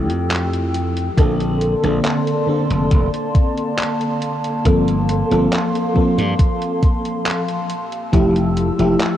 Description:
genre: vaporwave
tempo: 69 BPM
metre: 4/4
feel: straight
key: unclear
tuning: A4 = 441 Hz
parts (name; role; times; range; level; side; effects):
- mellow FM electric piano; accompaniment; 0.0-9.2 s; D3 to A4; -19 LUFS; equal; ensemble chorus, cassette tape, tape echo
- warbly tape-like pad; sustained chords; 0.0-9.2 s; Bb3 to E6; -24 LUFS; left 1 dB; chorus, built-in reverb, vintage 12-bit sampler grit
- slap bass; bass; 0.0-8.9 s; F1 to G2; -20 LUFS; equal; none
- detuned 8-bit digital drum machine; drums; 0.1-9.2 s; handclaps, hi-hat; -26 LUFS; equal; vintage 12-bit sampler grit
- electronic kick drum; drums; 1.2-8.3 s; none; -15 LUFS; equal; overdrive, vintage 12-bit sampler grit
room: light reverb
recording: worn, warbling old tape, cassette tape, warbly pitch drift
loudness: -16 LUFS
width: side -11 dB against mid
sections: 0.0-9.2 A section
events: none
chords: 0.0 Fmaj9; 1.2 Bbmaj9; 4.7 Gm11; 7.7 Fmaj9

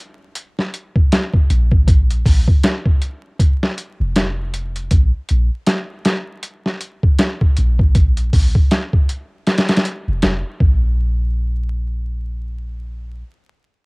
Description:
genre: trip hop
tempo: 79 BPM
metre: 4/4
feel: swing 58% on 16ths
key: unclear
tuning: A4 = 439 Hz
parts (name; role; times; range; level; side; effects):
- boom bap sampler-style drum kit; drums; 0.4-10.8 s; hi-hat, kick drum, snare drum; -14 LUFS; equal; none
- soft 808-style bass; bass; 1.5-13.2 s; F1 to Bb1; -17 LUFS; equal; none
room: little or no reverb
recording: home recording on cassette, vinyl crackle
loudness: -15 LUFS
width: side -35 dB against mid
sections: 0.0-11.0 A section; 11.0-13.9 B section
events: filter sweep on 808-style bass 0.0-11.0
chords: none

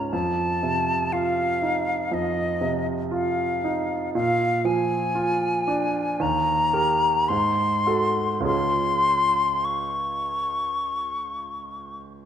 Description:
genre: classical, romantic duo for flute and grand piano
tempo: 50-61 BPM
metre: 4/4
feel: rubato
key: Db major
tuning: A4 = 441 Hz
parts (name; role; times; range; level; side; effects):
- bright silver concert flute; melody; 0.0-12.0 s; Eb5 to Db6; -23 LUFS; left 2 dB; none
- clear grand piano; accompaniment; 0.0-12.3 s; Db2 to Bb4; -26 LUFS; right 3 dB; none
room: moderate scoring stage reverb, RT60 1.6 s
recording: none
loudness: -21 LUFS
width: side -9 dB against mid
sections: 0.0-12.3 A section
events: none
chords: 0.1 F7; 4.1 Bb7; 6.2 Eb; 7.3 Ab7b9; 8.5 Db

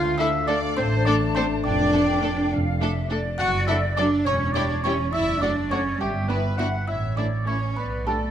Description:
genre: cinematic, playful, whimsical film cue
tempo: 69 BPM (dotted quarters)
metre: 6/8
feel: straight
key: D minor, D major from 3.4 s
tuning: A4 = 440 Hz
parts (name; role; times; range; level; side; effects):
- music box; melody; 0.0-8.3 s; G5 to F#6; -33 LUFS; right 4 dB; none
- large flute ensemble; second line; 0.0-8.3 s; C#5 to A5; -32 LUFS; left 1 dB; none
- warm clarinet; second line; 0.0-8.2 s; G4 to F#5; -31 LUFS; left 2 dB; none
- warm oboe; second line; 0.0-8.3 s; G4 to F#5; -32 LUFS; equal; none
- mellow French horn section; sustained chords; 0.0-8.2 s; E3 to E4; -31 LUFS; left 5 dB; none
- clear studio cello section; bass; 0.0-8.3 s; G3 to F#4; -27 LUFS; right 2 dB; none
- rich studio double bass section; bass; 0.0-8.3 s; E1 to D2; -26 LUFS; right 2 dB; none
- clear studio violin section; melody; 0.2-8.1 s; E4 to A4; -36 LUFS; left 2 dB; none
- dark studio violin section; second line; 0.2-8.3 s; G4 to F#5; -33 LUFS; left 3 dB; none
- rich studio viola section; accompaniment; 0.2-8.1 s; F#3 to E4; -32 LUFS; right 1 dB; none
room: moderate scoring stage reverb, RT60 1.6 s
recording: none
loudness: -21 LUFS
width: side -10 dB against mid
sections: 0.0-8.3 A section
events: none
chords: 0.0 Dm; 1.6 Dm/F; 3.4 D/F#; 4.3 C#dim/E; 5.1 D/F#; 6.0 Em7/G; 6.9 A; 7.8 G/B

